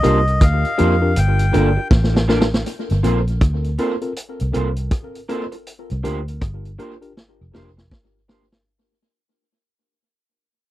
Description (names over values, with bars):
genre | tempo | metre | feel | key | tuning
lovers rock reggae | 80 BPM | 4/4 | swing 62% on 16ths | G minor | A4 = 440 Hz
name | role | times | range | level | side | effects
melodica | melody | 0.0-1.9 s | Eb5 to G5 | -22 LUFS | left 2 dB | tape echo
tine electric piano | accompaniment | 0.0-8.4 s | C4 to Bb4 | -24 LUFS | left 3 dB | tape echo
electric guitar through a small old amp | stabs | 0.0-8.4 s | Bb3 to D5 | -23 LUFS | right 6 dB | analog chorus
vintage muted fingered electric bass | bass | 0.0-7.9 s | F1 to F2 | -18 LUFS | equal | none
vintage drum kit | drums | 0.0-8.7 s | hi-hat, kick drum, rim click, snare drum | -18 LUFS | equal | tape echo
room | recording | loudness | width
little or no reverb | dry, close 1970s-style studio recording, faint mains hum | -16 LUFS | side -15 dB against mid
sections
0.0-2.7 A section; 2.7-8.7 B section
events
drum fill 1.9-2.7, 7.2-8.7; fade-out 2.7-8.7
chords
0.0 C7sus4; 1.2 Gm9; 2.7 Gm11 (rootless); 5.7 C7sus4